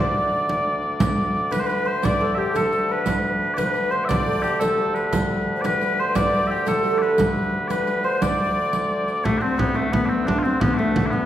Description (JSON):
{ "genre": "medieval dance", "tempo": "116 BPM (dotted quarters)", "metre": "6/8", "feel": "straight", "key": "unclear", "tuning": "A4 = 440 Hz", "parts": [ { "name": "mellow small bagpipes", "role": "melody", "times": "0.0-11.3 s", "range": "D2 to E5", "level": "-23 LUFS", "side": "left 1 dB", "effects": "none" }, { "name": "breathy mellow bass recorder", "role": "second line", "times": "0.0-11.3 s", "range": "A3 to D5", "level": "-26 LUFS", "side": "left 3 dB", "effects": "none" }, { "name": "hammered dulcimer", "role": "second line", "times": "0.0-11.3 s", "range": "A3 to D5", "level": "-28 LUFS", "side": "right 3 dB", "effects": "none" }, { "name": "frame drum", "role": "percussion", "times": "0.5-11.1 s", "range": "none", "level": "-26 LUFS", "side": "right 1 dB", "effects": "none" }, { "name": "riq", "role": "percussion", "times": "1.0-9.2 s", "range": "none", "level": "-28 LUFS", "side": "right 2 dB", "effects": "none" } ], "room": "wet recital hall reverb, RT60 1.4 s", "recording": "recorded in a church or concert hall", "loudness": "-19 LUFS", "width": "side -11 dB against mid", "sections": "1.0-9.2 A section; 9.2-11.3 B section", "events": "none", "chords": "none" }